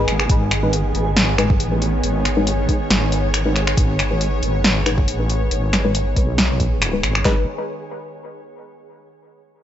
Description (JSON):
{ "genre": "deep dubstep", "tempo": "138 BPM", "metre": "4/4", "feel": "swing 54% on 16ths, half-time", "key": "G# phrygian", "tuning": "A4 = 436 Hz", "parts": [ { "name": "bowed-like drone", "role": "sustained chords", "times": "0.0-7.5 s", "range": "D#3 to C#5", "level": "-26 LUFS", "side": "left 1 dB", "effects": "built-in reverb" }, { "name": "filtered dub chord stab", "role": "stabs", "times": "0.0-7.4 s", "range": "G#3 to B4", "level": "-25 LUFS", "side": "left 3 dB", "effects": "chorus, dub echo" }, { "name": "deep soft wobble bass", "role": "bass", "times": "0.0-7.5 s", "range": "G#1 to B1", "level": "-20 LUFS", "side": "equal", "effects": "chorus" }, { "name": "flickering grainy texture", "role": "texture", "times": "0.0-7.3 s", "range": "G#4", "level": "-31 LUFS", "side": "right 3 dB", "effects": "built-in reverb" }, { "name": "deep house drum kit", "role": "drums", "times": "0.1-7.2 s", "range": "finger snaps, hi-hat, snare drum", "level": "-20 LUFS", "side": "equal", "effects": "overdrive" }, { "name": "deep house drum kit", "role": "drums", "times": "0.3-7.4 s", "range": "handclaps, kick drum, snare drum", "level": "-19 LUFS", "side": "equal", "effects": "overdrive" } ], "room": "light reverb", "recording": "nothing above 7.8 kHz", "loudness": "-16 LUFS", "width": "side -11 dB against mid", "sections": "0.0-7.3 A section; 7.3-9.0 B section", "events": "filter sweep on synth stab 0.0-7.3", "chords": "0.0 G#m" }